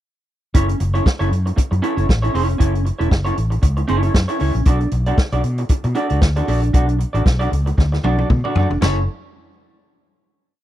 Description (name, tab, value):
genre	disco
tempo	116 BPM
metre	4/4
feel	swing 56% on 16ths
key	F# minor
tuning	A4 = 439 Hz
part	electric guitar through a small old amp	accompaniment	0.5-9.0 s	C#4 to D5	-22 LUFS	right 2 dB	none
part	fretless electric bass	bass	0.5-9.1 s	E1 to B2	-18 LUFS	equal	none
part	vintage drum kit	drums	0.5-9.0 s	crash cymbal, hi-hat, kick drum, snare drum, toms	-16 LUFS	equal	none
room	little or no reverb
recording	dry, close 1970s-style studio recording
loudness	-15 LUFS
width	side -13 dB against mid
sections	0.5-8.8 verse; 8.8-10.6 final chord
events	drum fill 7.8-8.8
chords	0.5 F#m7; 4.7 Bm7; 8.8 F#m7